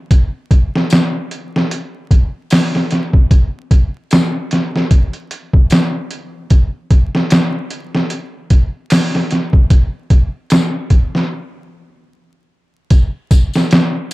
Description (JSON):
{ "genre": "trip hop", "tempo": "75 BPM", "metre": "4/4", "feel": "swing 57% on 16ths", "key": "none", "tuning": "none", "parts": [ { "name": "trip hop sampler-style drum kit", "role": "drums", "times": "0.1-14.1 s", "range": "hi-hat, kick drum, snare drum", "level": "-11 LUFS", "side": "equal", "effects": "overdrive" }, { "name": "tambourine", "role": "percussion", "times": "0.9-14.1 s", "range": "none", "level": "-31 LUFS", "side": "left 5 dB", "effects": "none" } ], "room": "light reverb, digital ambience", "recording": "dark, warm production, vinyl crackle", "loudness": "-12 LUFS", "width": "side -20 dB against mid", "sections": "0.0-12.9 A section; 12.9-14.1 B section", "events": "stop 11.3-12.9", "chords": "none", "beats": "| 0.11 0.91 1.71 2.51 | 3.31 4.11 4.91 5.71 | 6.51 7.31 8.11 8.91 | 9.71 10.51 11.31 12.11 | 12.91 13.71" }